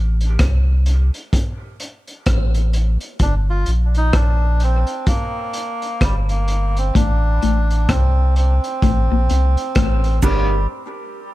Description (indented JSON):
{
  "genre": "dub reggae",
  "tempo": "64 BPM",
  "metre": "4/4",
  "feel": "swing 60% on 16ths",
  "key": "unclear",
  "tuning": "A4 = 441 Hz",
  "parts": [
    { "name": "warm sub bass", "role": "bass", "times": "0.0-10.7 s", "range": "G1 to C2", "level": "-16 LUFS", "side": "equal", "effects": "none" },
    { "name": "crunchy breakbeat drum kit", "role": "drums", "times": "0.2-10.5 s", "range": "crash cymbal, hi-hat, kick drum, rim click", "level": "-20 LUFS", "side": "equal", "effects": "none" },
    { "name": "melodica", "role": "melody", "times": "3.2-10.7 s", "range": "G3 to F4", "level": "-24 LUFS", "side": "right 1 dB", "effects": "dub echo" },
    { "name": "electric guitar through a small old amp", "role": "riff", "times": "7.0-10.1 s", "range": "A2 to C3", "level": "-25 LUFS", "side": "left 9 dB", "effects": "spring reverb, dub echo" },
    { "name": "mellow electric guitar", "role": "accompaniment", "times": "10.2-10.6 s", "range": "D4 to Bb4", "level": "-28 LUFS", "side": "right 5 dB", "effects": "dub echo" },
    { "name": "cabasa", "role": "percussion", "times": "10.2-10.7 s", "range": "none", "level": "-31 LUFS", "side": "right 11 dB", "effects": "none" }
  ],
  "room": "small room ambience",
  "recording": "echo-heavy mix",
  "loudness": "-15 LUFS",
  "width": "side -16 dB against mid",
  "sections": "0.0-10.7 A section",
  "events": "break 0.0-10.7",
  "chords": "0.0 Am; 3.2 Gm; 7.0 Amadd11; 10.2 Gm; 10.7 N.C."
}